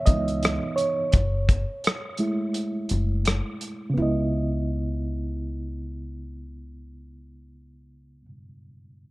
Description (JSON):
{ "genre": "lo-fi hip hop", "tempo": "85 BPM", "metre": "4/4", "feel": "swing 59% on 16ths", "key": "C# minor", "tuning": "A4 = 440 Hz", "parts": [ { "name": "reed electric piano", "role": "accompaniment", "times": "0.0-9.1 s", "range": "C#3 to E5", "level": "-28 LUFS", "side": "right 1 dB", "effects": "fast tremolo, cassette tape, low-pass filter" }, { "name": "upright bass", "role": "bass", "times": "0.1-8.2 s", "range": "F#1 to C#2", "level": "-28 LUFS", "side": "equal", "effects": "none" }, { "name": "warm soul drum kit", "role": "drums", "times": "0.1-3.8 s", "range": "hi-hat, kick drum, rim click", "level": "-23 LUFS", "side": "equal", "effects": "none" } ], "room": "light reverb, small room ambience", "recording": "dark, warm production", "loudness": "-23 LUFS", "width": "side -20 dB against mid", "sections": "0.0-4.0 A section; 4.0-6.8 B section", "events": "reed electric piano solo 0.0-4.0; filter sweep on reed electric piano 0.0-4.0; break 2.5-4.0", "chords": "0.0 C#m9; 1.1 F#m7; 4.0 C#m9", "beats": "0.43 | 1.13 1.84 2.54 3.25 | 3.96 4.66 5.37 6.07" }